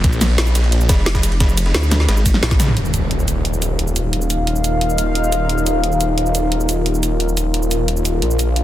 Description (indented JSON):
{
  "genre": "dark technical drum and bass",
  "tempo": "176 BPM",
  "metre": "4/4",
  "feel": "straight",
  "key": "unclear",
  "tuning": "A4 = 440 Hz",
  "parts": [
    { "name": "snarling distorted saw bass", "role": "bass", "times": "0.0-8.6 s", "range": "Eb1 to Bb1", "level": "-18 LUFS", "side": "equal", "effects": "distortion, tube saturation" },
    { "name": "breakbeat sampler-style drum kit", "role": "drums", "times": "0.0-2.7 s", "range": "ride cymbal, snare drum", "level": "-26 LUFS", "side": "equal", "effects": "high-pass filter on cymbals, high-pass filter on snare, high-pass filter on room" },
    { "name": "drum and bass drum kit", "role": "drums", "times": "0.0-8.6 s", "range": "hi-hat, ride cymbal, shaker, snare drum, toms", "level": "-21 LUFS", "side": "equal", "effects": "none" },
    { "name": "electronic kick drum", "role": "drums", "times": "0.0-2.6 s", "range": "none", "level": "-16 LUFS", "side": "equal", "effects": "none" },
    { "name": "vowel-sweep wobble bass", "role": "bass", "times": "0.9-2.4 s", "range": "F1 to D2", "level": "-16 LUFS", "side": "equal", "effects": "chorus, tube saturation" },
    { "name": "sweeping resonant pad", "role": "sustained chords", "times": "2.8-8.6 s", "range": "D4 to F5", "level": "-20 LUFS", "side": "left 1 dB", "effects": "chorus, sidechain pumping" },
    { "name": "impact", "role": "sound effects", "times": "2.8-4.1 s", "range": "none", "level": "-24 LUFS", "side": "equal", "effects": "none" }
  ],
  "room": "light reverb",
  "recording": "dense, heavily limited modern master",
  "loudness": "-15 LUFS",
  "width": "side -13 dB against mid",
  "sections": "0.0-2.8 A section; 2.8-8.6 B section",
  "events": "drop 0.0-2.8; drum fill 2.5; impact 2.8-4.1; filter sweep on analog synth pad 2.8-8.6",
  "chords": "0.0 Bb5; 2.8 Ebsus2",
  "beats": "| 0.04 0.38 0.72 1.06 | 1.40 1.75 2.09 2.43 | 2.77 3.11 3.45 3.79 | 4.13 4.47 4.81 5.15 | 5.50 5.84 6.18 6.52 | 6.86 7.20 7.54 7.88 | 8.22 8.56"
}